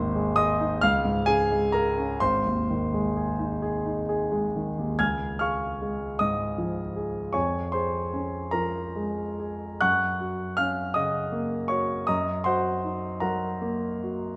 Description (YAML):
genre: classical, romantic nocturne for solo piano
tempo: 41-54 BPM (dotted quarters)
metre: 6/8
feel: rubato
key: Db major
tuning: A4 = 439 Hz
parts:
  - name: warm concert grand piano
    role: solo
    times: 0.0-14.4 s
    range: Ab1 to Ab6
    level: -27 LUFS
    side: equal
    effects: none
room: moderate recital hall reverb, RT60 1.5 s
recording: none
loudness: -27 LUFS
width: mono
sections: 0.0-5.0 A section; 5.0-14.4 B section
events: none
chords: 0.0 Ab; 0.8 Db; 2.2 Ab; 5.0 Db; 7.3 Db/F; 9.8 Gb; 12.1 Ebm/Gb